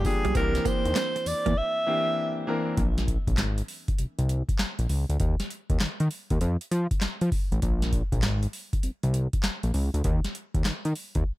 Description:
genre	R&B, new jack swing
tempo	99 BPM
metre	4/4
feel	swing 65% on 16ths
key	unclear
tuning	A4 = 440 Hz
part	clear alto saxophone	melody	0.0-2.5 s	Ab4 to E5	-28 LUFS	equal	tape echo
part	clear concert grand piano	accompaniment	0.0-2.8 s	D3 to G5	-31 LUFS	left 1 dB	none
part	fat analog bass	bass	0.0-11.2 s	Ab1 to F3	-25 LUFS	equal	none
part	booming analog drum machine	drums	0.0-11.3 s	handclaps, hi-hat, kick drum, snare drum, tambourine	-28 LUFS	equal	overdrive
part	direct-recorded clean electric guitar	riff	0.2-1.5 s	G3 to C4	-31 LUFS	right 8 dB	ensemble chorus
room	little or no reverb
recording	none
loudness	-24 LUFS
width	side -17 dB against mid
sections	0.0-2.8 A section; 2.8-11.4 B section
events	silent gap 1.6-2.8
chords	0.3 C9; 2.8 Abadd9; 5.2 N.C.; 6.4 F; 7.6 Abadd9; 10.0 N.C.

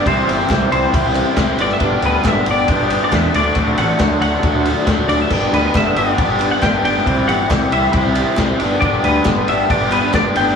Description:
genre	indie rock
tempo	137 BPM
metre	4/4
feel	straight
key	G major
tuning	A4 = 441 Hz
part	semi-hollow electric guitar	melody	0.0-10.6 s	B4 to G5	-20 LUFS	left 1 dB	analog chorus, analog delay
part	crunchy overdriven guitar	riff	0.0-10.6 s	E3 to G4	-19 LUFS	left 7 dB	phaser
part	overdriven electric guitar	riff	0.0-10.6 s	G2 to E4	-21 LUFS	right 6 dB	ensemble chorus
part	fuzz fingered electric bass	bass	0.1-10.5 s	G1 to E2	-21 LUFS	equal	overdrive
part	vintage drum kit	drums	0.1-10.5 s	crash cymbal, kick drum, ride cymbal, snare drum	-19 LUFS	equal	none
part	group handclap	percussion	0.5-10.2 s	none	-34 LUFS	right 9 dB	none
room	light reverb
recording	small room ambience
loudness	-13 LUFS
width	side -6 dB against mid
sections	0.0-10.6 A section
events	none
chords	0.1 C; 1.6 G; 3.3 D; 5.3 G; 7.1 C; 8.6 G

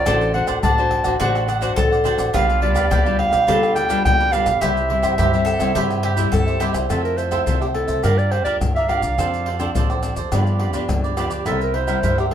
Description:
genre	samba and choro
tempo	105 BPM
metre	4/4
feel	straight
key	unclear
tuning	A4 = 439 Hz
part	warm clarinet	melody	0.0-12.3 s	G4 to A5	-21 LUFS	right 1 dB	none
part	mandolin	second line	0.0-6.7 s	F4 to C5	-24 LUFS	left 2 dB	none
part	cavaquinho	accompaniment	0.0-12.3 s	D4 to F#5	-25 LUFS	right 4 dB	none
part	nylon-string guitar	accompaniment	0.0-12.3 s	G2 to C5	-26 LUFS	left 5 dB	none
part	upright bass	bass	0.0-12.3 s	A1 to G2	-24 LUFS	equal	none
part	maracas, surdo, pandeiro and tamborim	percussion	0.1-12.3 s	none	-23 LUFS	left 1 dB	none
room	moderate studio ambience, RT60 0.5 s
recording	minimal, uncompressed stereo recording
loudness	-16 LUFS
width	side -9 dB against mid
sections	0.0-6.9 A section; 6.9-12.3 B section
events	none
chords	0.1 D7/A; 2.3 G7/B; 4.6 C; 6.9 Fmaj7; 8.0 Gm7; 9.2 Dm7/F; 10.3 G7; 11.5 C7

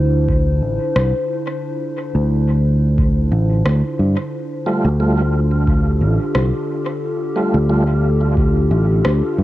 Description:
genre	ambient dub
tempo	89 BPM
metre	4/4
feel	swing 53% on 16ths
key	unclear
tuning	A4 = 436 Hz
part	warbly tape-like pad	sustained chords	0.0-9.4 s	D3 to C5	-22 LUFS	left 1 dB	chorus, built-in reverb, cassette tape
part	fingered electric bass	bass	0.0-9.4 s	A1 to G2	-15 LUFS	equal	none
part	electronic kick drum	drums	0.3-8.5 s	none	-19 LUFS	equal	cassette tape
part	electronic rim click	drums	1.0-9.2 s	none	-25 LUFS	equal	overdrive, cassette tape, dub echo
part	tonewheel organ	stabs	4.7-7.8 s	G3 to F4	-22 LUFS	right 1 dB	chorus vibrato, stopped rotary speaker, cassette tape, dub echo
room	little or no reverb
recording	home recording on cassette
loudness	-15 LUFS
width	side -15 dB against mid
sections	0.0-9.4 A section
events	none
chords	0.0 Dm7; 4.3 Fadd9

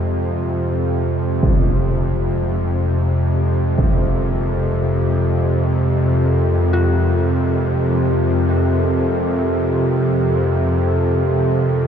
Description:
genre	dark ambient drone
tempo	free time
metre	none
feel	none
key	F minor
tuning	A4 = 440 Hz
part	dark analog pad	sustained chords	0.0-11.9 s	Ab3 to C5	-27 LUFS	equal	wide subtle chorus
part	bowed-like drone	drone	0.0-11.9 s	F2 to C3	-16 LUFS	equal	built-in reverb
part	impact	percussion	1.4-4.0 s	none	-21 LUFS	equal	low-pass filter on sfx
part	dark detuned synth bell	arpeggios	6.7-11.9 s	F4	-29 LUFS	left 6 dB	chorus, diffuse ambient delay
room	moderate huge ambient reverb, RT60 8.1 s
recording	dark, warm production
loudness	-15 LUFS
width	side -8 dB against mid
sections	0.0-11.9 A section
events	fade-in on synth bell 0.0-11.9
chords	0.0 Fmadd9

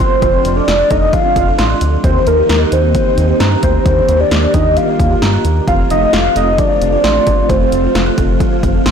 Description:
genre	synth-pop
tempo	132 BPM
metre	4/4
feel	straight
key	F mixolydian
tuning	A4 = 440 Hz
part	warm velvety synth lead	melody	0.0-8.2 s	Bb4 to F5	-14 LUFS	equal	chorus, tremolo, ping-pong delay
part	ensemble organ-string	sustained chords	0.0-8.9 s	G3 to F4	-19 LUFS	equal	ensemble chorus
part	round analog bass	bass	0.0-8.9 s	F1 to G2	-16 LUFS	equal	none
part	punchy analog drum machine	drums	0.0-8.9 s	hi-hat, kick drum, snare drum	-17 LUFS	equal	none
part	buzzing kalimba	arpeggios	0.2-8.9 s	Eb3 to Gb6	-21 LUFS	right 6 dB	ping-pong delay
room	moderate digital room reverb, RT60 1.1 s, digital ambience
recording	blown-out, overdriven recording, overdrive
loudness	-10 LUFS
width	side -7 dB against mid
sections	0.0-8.9 A section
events	none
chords	0.0 F; 2.0 Eb; 5.7 F

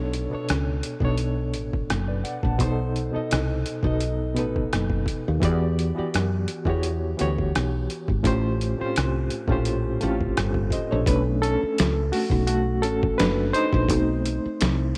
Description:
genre	R&B, neo-soul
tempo	85 BPM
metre	4/4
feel	straight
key	unclear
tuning	A4 = 441 Hz
part	barky reed electric piano	accompaniment	0.0-15.0 s	A2 to A5	-28 LUFS	equal	overdrive, medium tremolo
part	woody fretless electric bass	bass	0.0-14.9 s	F#1 to F#2	-27 LUFS	equal	lush chorus
part	boom bap sampler-style drum kit	drums	0.1-15.0 s	hi-hat, kick drum, rim click, snare drum	-30 LUFS	equal	overdrive
room	light reverb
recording	none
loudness	-24 LUFS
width	mono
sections	0.0-11.1 A section; 11.1-15.0 B section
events	reed electric piano solo 11.1-15.0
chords	0.0 Bm7; 2.6 B7b9; 5.4 Em7; 8.2 A7alt; 11.1 Bm7; 13.9 B7b9

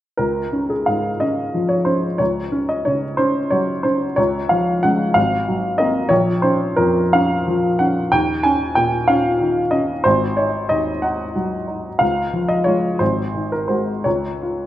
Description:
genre	classical, romantic character piece for solo piano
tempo	54-64 BPM (dotted quarters)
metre	6/8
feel	rubato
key	Db major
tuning	A4 = 444 Hz
part	warm upright piano	solo	0.2-14.7 s	Ab1 to Ab5	-16 LUFS	equal	none
room	wet recital hall reverb, RT60 1.4 s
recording	none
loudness	-16 LUFS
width	side -13 dB against mid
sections	0.2-14.7 A section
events	none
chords	0.2 Db; 2.2 Gb5/Db; 4.2 Db; 5.2 Ab9; 6.1 Bbm; 8.1 Eb5; 10.1 Ab5; 12.0 Db; 13.0 Ab7; 14.1 Db

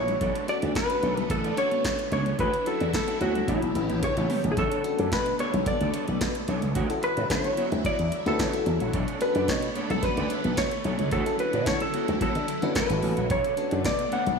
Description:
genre	early-eighties boogie funk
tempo	110 BPM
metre	4/4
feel	straight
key	B minor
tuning	A4 = 440 Hz
part	hollow-body jazz guitar	melody	0.0-14.4 s	E4 to F#5	-28 LUFS	left 1 dB	wide subtle chorus, diffuse ambient delay
part	phased string machine	sustained chords	0.0-14.4 s	C#3 to G4	-34 LUFS	equal	ensemble chorus, phaser
part	slap bass with an envelope filter	bass	0.0-14.4 s	G#1 to D3	-28 LUFS	equal	none
part	mellow electric guitar	riff	0.1-14.3 s	D4 to D5	-35 LUFS	right 5 dB	ensemble chorus
part	electro analog drum machine	drums	0.1-14.4 s	hi-hat, kick drum, snare drum, toms	-31 LUFS	equal	none
part	congas	percussion	0.1-14.4 s	none	-37 LUFS	left 6 dB	none
part	FM electric piano with soft pad layer	accompaniment	0.5-14.0 s	B3 to B4	-33 LUFS	left 2 dB	chorus, phaser
room	moderate lush hall reverb, RT60 2.1 s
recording	dreamy mix soaked in reverb, studio ambience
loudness	-23 LUFS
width	side -5 dB against mid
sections	0.0-4.6 A section; 4.6-14.4 B section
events	drum fill 4.0-4.6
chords	0.2 Bm9; 2.4 Dmaj9; 3.5 A7; 4.6 Bm9; 6.8 Dmaj9; 8.9 Bm9; 11.1 Dmaj9; 13.3 Bm9

